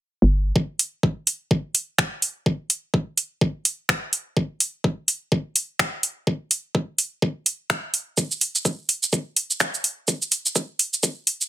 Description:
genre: minimal techno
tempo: 126 BPM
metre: 4/4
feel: swing 59% on 16ths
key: unclear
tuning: A4 = 441 Hz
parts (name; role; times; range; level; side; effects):
- hollow knocking FM bass; bass; 0.2-0.5 s; G1; -17 LUFS; equal; sidechain pumping
- electronic kick drum; drums; 0.6-11.1 s; none; -21 LUFS; equal; high-pass filter on kick
- garage drum kit; drums; 0.8-11.5 s; finger snaps, hi-hat, shaker; -20 LUFS; right 1 dB; high-pass filter on hats, soft clipping on snare, high-pass filter on snare, high-pass filter on perc
room: little or no reverb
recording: dense, heavily limited modern master, high-pass filter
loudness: -21 LUFS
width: side -15 dB against mid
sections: 0.6-11.5 A section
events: build-up 0.6-11.5; filter sweep 0.6-11.5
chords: none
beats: 0.08 | 0.56 1.03 1.51 1.99 | 2.46 2.94 3.41 3.89 | 4.37 4.84 5.32 5.79 | 6.27 6.75 7.22 7.70 | 8.18 8.65 9.13 9.60 | 10.08 10.56 11.03

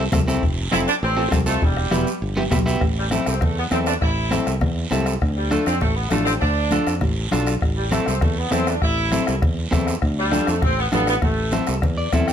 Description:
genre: latin, cumbia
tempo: 200 BPM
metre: 4/4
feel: straight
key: A minor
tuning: A4 = 440 Hz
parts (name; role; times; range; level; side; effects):
- warm saxophone section; melody; 0.0-11.8 s; G3 to E4; -24 LUFS; right 1 dB; none
- electric guitar at the edge of break-up; accompaniment; 0.0-12.3 s; B3 to G5; -24 LUFS; equal; none
- fingered electric bass; bass; 0.0-12.3 s; E1 to F2; -24 LUFS; equal; none
- bombo; percussion; 0.1-12.3 s; none; -24 LUFS; left 1 dB; none
- congas; percussion; 0.1-12.3 s; none; -29 LUFS; left 3 dB; none
- guiro; percussion; 0.1-12.3 s; none; -33 LUFS; right 6 dB; none
room: moderate studio reverb, RT60 0.9 s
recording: none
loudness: -18 LUFS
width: side -9 dB against mid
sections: 0.0-2.8 A section; 2.8-12.3 B section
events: clean electric guitar fill 11.8-12.3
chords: 0.4 F; 1.6 Em; 2.8 Am; 5.2 Dm; 7.6 Am; 10.0 Dm; 11.2 Am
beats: 0.13 | 0.43 0.72 1.02 1.32 | 1.62 1.92 2.22 2.52 | 2.82 3.12 3.42 3.72 | 4.02 4.32 4.62 4.92 | 5.22 5.52 5.82 6.12 | 6.42 6.72 7.02 7.32 | 7.62 7.92 8.22 8.53 | 8.83 9.13 9.43 9.73 | 10.03 10.33 10.63 10.93 | 11.23 11.53 11.83 12.13

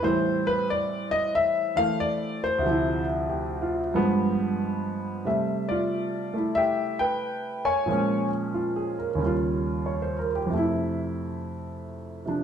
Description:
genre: solo jazz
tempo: 91 BPM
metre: 4/4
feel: swing 67% on 8ths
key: C major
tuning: A4 = 440 Hz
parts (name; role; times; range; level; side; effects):
- warm concert grand piano; solo; 0.0-12.4 s; D2 to Ab5; -24 LUFS; equal; none
room: wet stone room reverb, RT60 1.0 s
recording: band playing live in one room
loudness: -24 LUFS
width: side -8 dB against mid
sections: 0.0-5.2 A section; 5.2-12.4 B section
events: grand piano solo 0.0-5.2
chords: 0.0 Am7; 2.6 Dm9; 3.9 G7b9; 5.2 C6; 7.9 Bbm7; 9.2 Eb9; 10.5 Fmaj7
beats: | 0.01 0.67 1.32 1.98 | 2.63 3.28 3.94 4.59 | 5.25 5.91 6.56 7.22 | 7.88 8.53 9.19 9.85 | 10.51 11.17 11.82

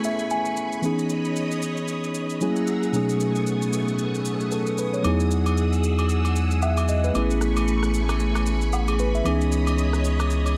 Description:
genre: amapiano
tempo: 114 BPM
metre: 4/4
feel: swing 58% on 16ths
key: E major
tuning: A4 = 440 Hz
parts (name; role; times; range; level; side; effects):
- mellow tine electric piano; accompaniment; 0.0-10.6 s; B2 to G#5; -27 LUFS; equal; none
- string machine, full ensemble; sustained chords; 0.0-10.6 s; A3 to E6; -33 LUFS; equal; ensemble chorus
- electronic shaker and rim click; drums; 0.0-10.6 s; none; -39 LUFS; equal; none
- downlifter; sound effects; 0.0-0.8 s; none; barely audible; none; none
- saturated sub bass; bass; 5.0-10.6 s; A1 to E2; -25 LUFS; equal; none
- agogo bells and woodblock; percussion; 5.0-10.6 s; none; -35 LUFS; equal; none
room: light reverb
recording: none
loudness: -23 LUFS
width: mono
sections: 0.0-10.6 A section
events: tine electric piano fill 0.0-0.8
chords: 0.0 Amaj9; 0.8 C#m9; 2.4 F#9; 2.9 B13; 5.0 Emaj9; 7.1 Amaj9; 9.3 C#m9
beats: 0.31 | 0.83 1.36 1.89 2.41 | 2.94 3.46 3.99 4.52 | 5.04 5.57 6.09 6.62 | 7.15 7.67 8.20 8.73 | 9.25 9.78 10.31

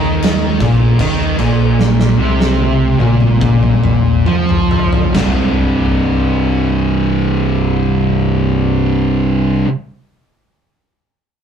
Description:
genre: stoner and doom metal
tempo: 67-78 BPM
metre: 4/4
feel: straight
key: C minor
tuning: A4 = 440 Hz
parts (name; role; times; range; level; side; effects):
- distorted electric guitar; riff; 0.0-9.7 s; C2 to F3; -18 LUFS; left 1 dB; distortion
- thick fuzz guitar; riff; 0.0-9.7 s; C2 to F3; -14 LUFS; right 1 dB; distortion
- fingered electric bass; bass; 0.0-9.6 s; C1 to F2; -21 LUFS; equal; overdrive
- oversized low-tuned drum kit; drums; 0.2-5.4 s; crash cymbal, kick drum, snare drum, toms; -17 LUFS; equal; none
room: light reverb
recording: rough rehearsal-room recording, tube saturation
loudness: -11 LUFS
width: side -8 dB against mid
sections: 0.0-5.1 A section; 5.1-8.7 B section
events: slowing down 0.0-5.1; drum fill 1.8-5.1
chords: 0.0 Bb5; 5.1 C5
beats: 0.21 0.99 | 1.78 2.59 3.42 4.27 | 5.15 6.04 6.94 7.84

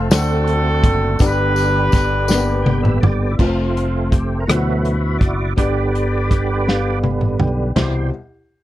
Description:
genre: slow gospel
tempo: 55 BPM (dotted quarters)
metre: 6/8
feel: straight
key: unclear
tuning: A4 = 442 Hz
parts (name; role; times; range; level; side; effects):
- warm horn section; melody; 0.0-3.0 s; C4 to B4; -20 LUFS; right 1 dB; none
- warm grand piano; accompaniment; 0.0-8.1 s; C2 to B5; -23 LUFS; left 4 dB; none
- tonewheel organ; sustained chords; 0.0-8.1 s; B2 to G5; -23 LUFS; right 3 dB; fast rotary speaker, overdrive, chorus vibrato
- fingered electric bass; bass; 0.0-8.1 s; F1 to D2; -20 LUFS; equal; none
- warm soul drum kit; drums; 0.1-7.9 s; crash cymbal, hi-hat, kick drum, rim click, snare drum, toms; -17 LUFS; equal; none
- tambourine; percussion; 0.1-2.6 s; none; -31 LUFS; left 10 dB; none
room: light reverb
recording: none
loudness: -15 LUFS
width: side -14 dB against mid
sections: 0.0-3.4 A section; 3.4-7.8 B section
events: drum fill 2.3-3.4, 6.7-7.8; tonewheel organ fill 2.3-3.4; tonewheel organ solo 3.4-7.8; grand piano fill 6.7-7.8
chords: 0.1 D7; 1.2 G; 3.4 F; 4.5 D13; 5.6 G; 7.8 Cmaj7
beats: 0.12 | 1.21 2.30 | 3.39 4.48 | 5.57 6.67 | 7.76

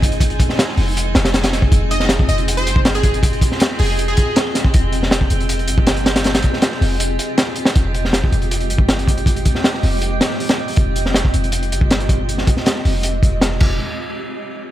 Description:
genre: drum and bass, jungle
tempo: 159 BPM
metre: 4/4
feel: straight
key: F minor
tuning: A4 = 440 Hz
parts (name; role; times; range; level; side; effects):
- granular cloud pad; sustained chords; 0.0-13.8 s; Ab3 to Eb5; -24 LUFS; right 1 dB; built-in reverb
- warm 808-style bass; bass; 0.0-13.8 s; F1 to G1; -19 LUFS; equal; none
- crunchy breakbeat drum kit; drums; 0.0-13.7 s; crash cymbal, hi-hat, kick drum, snare drum; -16 LUFS; equal; none
- drifting glass-harmonics texture; texture; 0.0-13.8 s; Ab3 to Ab5; -30 LUFS; right 3 dB; chorus, built-in reverb
- plucky unison lead; melody; 1.9-4.6 s; Ab4 to Eb5; -23 LUFS; right 1 dB; dub echo
room: small room ambience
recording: none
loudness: -14 LUFS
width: side -13 dB against mid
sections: 0.0-7.8 A section; 7.8-13.8 B section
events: drop 0.0-7.8; kick drops out 7.0-7.8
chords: 0.0 Fm9; 13.8 N.C.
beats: | 0.21 0.59 0.96 1.34 | 1.72 2.10 2.47 2.85 | 3.23 3.61 3.98 4.36 | 4.74 5.12 5.49 5.87 | 6.25 6.62 7.00 7.38 | 7.76 8.13 8.51 8.89 | 9.27 9.64 10.02 10.40 | 10.78 11.15 11.53 11.91 | 12.29 12.66 13.04 13.42 | 13.79

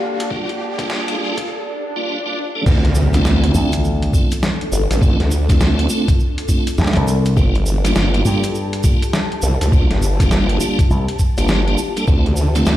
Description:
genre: glitch hop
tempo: 102 BPM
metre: 4/4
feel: swing 62% on 16ths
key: D minor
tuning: A4 = 440 Hz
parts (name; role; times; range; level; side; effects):
- dark analog pad; sustained chords; 0.0-1.5 s; Bb3 to F5; -30 LUFS; left 4 dB; chorus, vintage 12-bit sampler grit, sidechain pumping
- riser, swell and impact; sound effects; 0.0-5.0 s; none; -25 LUFS; equal; none
- ethereal airy pad; texture; 0.0-12.8 s; D4 to A5; -28 LUFS; left 2 dB; ensemble chorus, built-in reverb, sidechain pumping
- boom bap sampler-style drum kit; drums; 0.2-12.8 s; crash cymbal, hi-hat, snare drum; -23 LUFS; equal; high-pass filter on hats, high-pass filter on snare, high-pass filter on cymbals, high-pass filter on room
- tonewheel organ; stabs; 0.3-12.8 s; G3 to A4; -22 LUFS; right 1 dB; overdrive, chorus vibrato, fast rotary speaker, vintage 12-bit sampler grit, sidechain pumping, dub echo
- electronic kick drum; drums; 0.3-12.2 s; none; -15 LUFS; equal; none
- formant-sweep wobble bass; bass; 2.7-12.8 s; G1 to D2; -16 LUFS; equal; chorus
- tube shaker; percussion; 2.7-12.8 s; none; -31 LUFS; right 3 dB; none
- slap bass with an envelope filter; bass; 3.5-11.1 s; C2 to G2; -17 LUFS; equal; none
room: little or no reverb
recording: played on a big sound system in a bare room, large studio reverb, high-pass filter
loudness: -14 LUFS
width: side -14 dB against mid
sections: 0.0-2.7 A section; 2.7-12.8 B section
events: build-up 0.0-2.7; riser 0.0-1.5; filter sweep 0.0-2.7; swell 1.5-2.7; drop 2.7-12.8; impact 2.7-5.0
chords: 0.0 Gm7; 2.7 Dm7; 7.4 Gm7; 12.1 Dm7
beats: | 0.31 0.90 1.49 2.08 | 2.66 3.25 3.84 4.43 | 5.02 5.61 6.19 6.78 | 7.37 7.96 8.55 9.13 | 9.72 10.31 10.90 11.49 | 12.07 12.66

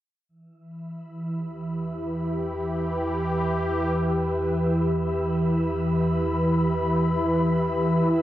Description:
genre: ambient, sequencer-driven space music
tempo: free time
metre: none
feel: none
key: E minor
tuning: A4 = 440 Hz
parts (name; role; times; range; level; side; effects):
- sweeping resonant pad; sustained chords; 0.3-8.2 s; E3 to B5; -23 LUFS; equal; chorus, shimmer reverb
- analog drone; bass; 1.8-8.2 s; E2; -33 LUFS; equal; chorus
- wind-like tuned noise texture; texture; 0.8-8.2 s; E5; -38 LUFS; right 1 dB; built-in reverb, shimmer reverb
room: wet spring reverb, RT60 2.2 s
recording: home recording on cassette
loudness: -22 LUFS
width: side -13 dB against mid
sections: 0.3-8.2 A section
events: fade-in on analog synth pad 0.3-8.2; fade-in on synth drone 0.3-8.2; fade-in on synth texture 0.3-8.2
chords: 0.3 Em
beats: free time

